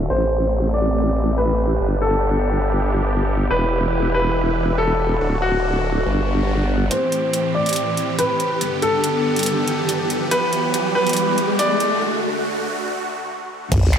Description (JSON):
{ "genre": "heavy wobble dubstep", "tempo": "141 BPM", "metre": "4/4", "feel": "swing 54% on 16ths, half-time", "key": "A minor", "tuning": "A4 = 440 Hz", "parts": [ { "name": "bright grand piano", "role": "melody", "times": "0.0-12.0 s", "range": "F#4 to D5", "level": "-22 LUFS", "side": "left 1 dB", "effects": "low-pass filter, ping-pong delay" }, { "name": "supersaw chords", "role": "sustained chords", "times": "0.0-13.7 s", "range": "D2 to B4", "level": "-23 LUFS", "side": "right 1 dB", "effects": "phaser, sidechain pumping" }, { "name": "formant-sweep wobble bass", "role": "bass", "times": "0.0-6.9, 13.7-14.0 s", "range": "D1 to A1", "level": "-20 LUFS", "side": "equal", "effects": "chorus, overdrive" }, { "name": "dubstep drum kit", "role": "drums", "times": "6.9-14.0 s", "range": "crash cymbal, finger snaps, hi-hat", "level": "-25 LUFS", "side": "right 1 dB", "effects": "small room ambience" }, { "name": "riser and sub drop", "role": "sound effects", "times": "8.5-14.0 s", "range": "none", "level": "-24 LUFS", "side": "equal", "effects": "none" }, { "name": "electronic kick drum", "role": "drums", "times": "13.7-13.8 s", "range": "none", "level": "-20 LUFS", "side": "equal", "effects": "small room ambience" } ], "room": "light reverb", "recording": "high-pass filter, low-pass filter", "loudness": "-17 LUFS", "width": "side -8 dB against mid", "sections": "0.0-6.9 A section; 6.9-13.7 B section", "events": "filter sweep on supersaw synth 0.0-6.9; filter sweep 0.0-6.9; build-up 6.9-13.7; filter sweep on grand piano 6.9-13.7; riser 8.5-12.0; break 12.0-13.7; impact 13.7", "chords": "0.1 Am7; 1.8 G; 3.5 Em; 5.2 D; 6.1 G; 6.9 Am7; 8.6 G; 10.3 Em; 12.0 D" }